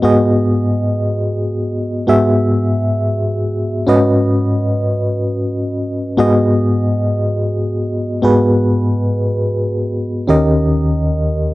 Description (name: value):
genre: pop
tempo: free time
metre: none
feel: none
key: G# minor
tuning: A4 = 436 Hz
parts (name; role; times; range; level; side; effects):
- FM electric piano with tremolo; solo; 0.0-11.5 s; D#2 to E5; -13 LUFS; equal; none
room: light reverb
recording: dry, close 1970s-style studio recording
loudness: -13 LUFS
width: side -18 dB against mid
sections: 0.0-10.3 A section; 10.3-11.5 B section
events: none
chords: 0.0 G#m7; 2.1 Eadd9/G#; 3.9 Badd9/G#; 6.2 G#m7; 10.3 D#7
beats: free time